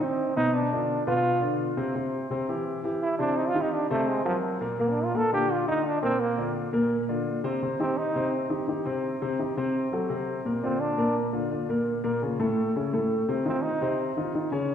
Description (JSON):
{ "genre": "jazz", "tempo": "169 BPM", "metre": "4/4", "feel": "straight", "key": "C minor from 7.6 s", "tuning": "A4 = 444 Hz", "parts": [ { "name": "bright trombone", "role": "melody", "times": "0.0-8.3, 10.6-11.2, 13.5-14.0 s", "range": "F3 to A4", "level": "-27 LUFS", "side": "right 2 dB", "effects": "none" }, { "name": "warm grand piano", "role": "accompaniment", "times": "0.0-14.7 s", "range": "A2 to Db5", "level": "-26 LUFS", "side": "left 1 dB", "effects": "none" } ], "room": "wet scoring stage reverb, RT60 1.8 s", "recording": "recorded in a church or concert hall", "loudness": "-24 LUFS", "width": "side -8 dB against mid", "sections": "0.0-7.6 A section; 7.6-14.7 A section", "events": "trombone solo 0.0-14.7", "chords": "0.0 Eb5; 0.5 Bdim; 2.0 C; 3.4 Cm69; 4.1 Ab9; 4.8 Bbadd9; 7.6 Cm; 9.7 F#dim/C; 10.5 Bb; 11.9 Bbm; 12.6 A; 13.3 Cmadd11" }